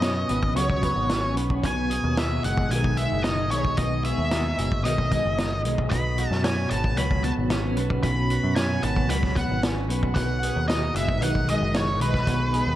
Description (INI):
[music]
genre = psychedelic rock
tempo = 113 BPM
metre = 4/4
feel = straight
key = B major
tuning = A4 = 440 Hz
[part]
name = octave-fuzz lead guitar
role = melody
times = 0.0-12.8 s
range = B4 to B5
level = -28 LUFS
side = equal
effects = wah, distortion, analog delay
[part]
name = twelve-string electric guitar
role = riff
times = 0.0-12.8 s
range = B2 to G#4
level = -27 LUFS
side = equal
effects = tremolo, double-tracked left and right, analog delay
[part]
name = overdriven picked electric bass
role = bass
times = 0.0-12.8 s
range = F#1 to F#2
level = -27 LUFS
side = equal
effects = none
[part]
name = vintage drum kit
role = drums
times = 0.0-12.7 s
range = hi-hat, kick drum, snare drum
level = -28 LUFS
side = equal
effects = analog delay
[sound]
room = light reverb, studio ambience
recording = echo-heavy mix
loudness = -22 LUFS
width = side -13 dB against mid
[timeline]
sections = 0.0-12.8 A section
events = none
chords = 0.0 Bsus2; 1.6 G#m; 5.9 Bsus2; 10.2 G#m